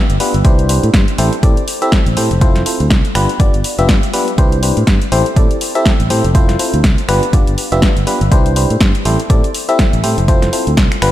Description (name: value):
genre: piano house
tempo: 122 BPM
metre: 4/4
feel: swing 58% on 16ths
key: C major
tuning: A4 = 440 Hz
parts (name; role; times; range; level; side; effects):
- barking FM electric piano; riff; 0.0-11.1 s; B3 to E5; -16 LUFS; left 1 dB; chorus, vintage 12-bit sampler grit, sidechain pumping, ping-pong delay
- fingered electric bass; bass; 0.1-11.1 s; F1 to A2; -16 LUFS; equal; sidechain pumping
- house drum kit; drums; 0.1-11.1 s; finger snaps, hi-hat, snare drum; -18 LUFS; equal; small room ambience
- electronic kick drum; drums; 0.4-10.9 s; none; -12 LUFS; equal; overdrive, small room ambience
room: light reverb, digital ambience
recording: none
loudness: -10 LUFS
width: side -13 dB against mid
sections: 0.0-11.1 A section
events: none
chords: 0.4 Cmaj9; 1.2 Am7; 2.4 Fmaj7; 3.2 G7; 4.4 Cmaj9; 5.1 Am7; 6.3 Fmaj7; 7.1 G7; 8.3 Cmaj9; 9.1 Am7; 10.3 Fmaj7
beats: | 0.45 0.94 1.43 1.92 | 2.41 2.91 3.40 3.89 | 4.38 4.87 5.37 5.86 | 6.35 6.84 7.33 7.82 | 8.32 8.81 9.30 9.79 | 10.28 10.78